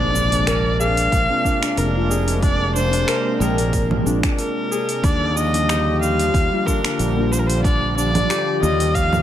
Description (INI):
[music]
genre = organic downtempo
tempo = 92 BPM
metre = 4/4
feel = swing 54% on 16ths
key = unclear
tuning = A4 = 435 Hz
[part]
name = rich kamancheh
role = melody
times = 0.0-9.2 s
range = Bb4 to F5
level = -22 LUFS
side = equal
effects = tape echo
[part]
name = warm analog pad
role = sustained chords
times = 0.0-9.2 s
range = C3 to D4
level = -26 LUFS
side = right 2 dB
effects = chorus, tremolo, vintage 12-bit sampler grit, sidechain pumping
[part]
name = Celtic harp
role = arpeggios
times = 0.0-9.2 s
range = D4 to C5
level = -25 LUFS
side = left 4 dB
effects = tape echo
[part]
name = fretless electric bass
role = bass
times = 0.0-9.2 s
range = F1 to Eb2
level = -21 LUFS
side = equal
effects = none
[part]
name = impact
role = sound effects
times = 0.0-2.4 s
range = none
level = -32 LUFS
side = equal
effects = none
[part]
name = deep house drum kit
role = drums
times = 0.2-9.2 s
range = cabasa, congas, finger snaps, hi-hat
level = -26 LUFS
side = right 2 dB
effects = overdrive
[part]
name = electronic kick drum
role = drums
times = 1.1-9.1 s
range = none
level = -21 LUFS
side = equal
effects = overdrive
[part]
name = deep mellow chord stab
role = accompaniment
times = 1.3-9.2 s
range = D3 to G5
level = -27 LUFS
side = left 2 dB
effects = chorus, sidechain pumping, tape echo
[sound]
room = light reverb, digital ambience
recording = none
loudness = -16 LUFS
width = side -11 dB against mid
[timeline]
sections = 0.0-9.2 A section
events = impact 0.0-2.4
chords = 0.0 Bb9; 5.0 Ebmaj9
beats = 0.47 1.12 1.77 | 2.43 3.08 3.73 4.38 | 5.04 5.69 6.34 6.99 | 7.64 8.30 8.95